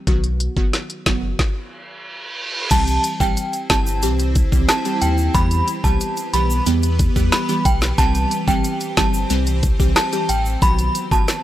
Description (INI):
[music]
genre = dancehall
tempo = 91 BPM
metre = 4/4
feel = straight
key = unclear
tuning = A4 = 440 Hz
[part]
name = glassy wavetable pluck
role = accompaniment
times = 0.1-11.3 s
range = D#3 to G4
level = -24 LUFS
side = right 1 dB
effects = chorus, phaser
[part]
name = sub bass with octave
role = bass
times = 0.1-11.3 s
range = F#1 to E2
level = -21 LUFS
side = equal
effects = none
[part]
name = island pop drum kit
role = drums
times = 0.1-11.4 s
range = crash cymbal, hi-hat, kick drum, rim click, snare drum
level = -18 LUFS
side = equal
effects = none
[part]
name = reverse cymbal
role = sound effects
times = 1.8-2.7 s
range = none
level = -27 LUFS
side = right 2 dB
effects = none
[part]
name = synth chime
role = melody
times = 2.7-11.3 s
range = G5 to B5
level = -22 LUFS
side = right 1 dB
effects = ensemble chorus, tape echo
[part]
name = granular cloud pad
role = sustained chords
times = 3.6-11.4 s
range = D#3 to C5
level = -28 LUFS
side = equal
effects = built-in reverb, sidechain pumping
[part]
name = egg shaker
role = percussion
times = 2.7-11.4 s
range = none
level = -34 LUFS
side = right 3 dB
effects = none
[sound]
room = little or no reverb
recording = dry, gritty hardware recording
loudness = -16 LUFS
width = side -13 dB against mid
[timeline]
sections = 0.0-2.7 A section; 2.7-11.4 B section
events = stop 1.4-2.7; reverse cymbal 1.8-2.7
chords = 0.1 B; 2.7 C; 5.3 Em; 8.0 C; 10.6 B